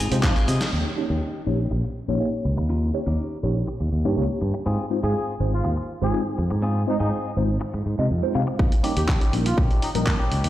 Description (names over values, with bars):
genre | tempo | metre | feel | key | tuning
filtered disco house | 122 BPM | 4/4 | straight | unclear | A4 = 439 Hz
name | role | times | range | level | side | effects
clean electric guitar | riff | 0.0-10.5 s | C4 to Ab5 | -31 LUFS | left 2 dB | sidechain pumping, low-pass filter
fingered electric bass | bass | 0.0-10.5 s | Ab1 to C3 | -23 LUFS | equal | sidechain pumping, low-pass filter
mellow tine electric piano | accompaniment | 0.1-10.1 s | G3 to F5 | -28 LUFS | equal | medium stereo tremolo, phaser, sidechain pumping, low-pass filter
dusty soul sampler-style drum kit | drums | 0.1-0.7, 8.7-10.5 s | handclaps, hi-hat, shaker, snare drum | -29 LUFS | equal | sidechain pumping on hats, high-pass filter on hats, sidechain pumping on perc, high-pass filter on perc, high-pass filter on snare
tambourine | percussion | 0.1-0.7, 8.6-10.5 s | none | barely audible | none | none
electronic kick drum | drums | 0.2-0.3, 8.6-10.2 s | none | -21 LUFS | equal | overdrive
warm horn section | melody | 5.0-10.0 s | Eb4 to Ab4 | -31 LUFS | equal | sidechain pumping, low-pass filter, digital delay
room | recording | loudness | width
moderate lush hall reverb, RT60 2.3 s | played on a big sound system in a bare room, stone room reverb | -21 LUFS | side -14 dB against mid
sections
0.7-8.6 A section; 8.6-10.5 B section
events
clean electric guitar fill 0.0-0.7; drum fill 0.2-0.7; band accent 0.6; build-up 8.6-10.5; filter sweep on horn section 8.6-10.5; filter sweep 8.6-10.5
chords
0.0 Ab6; 0.7 Eb7; 4.7 Ab6; 8.6 Eb7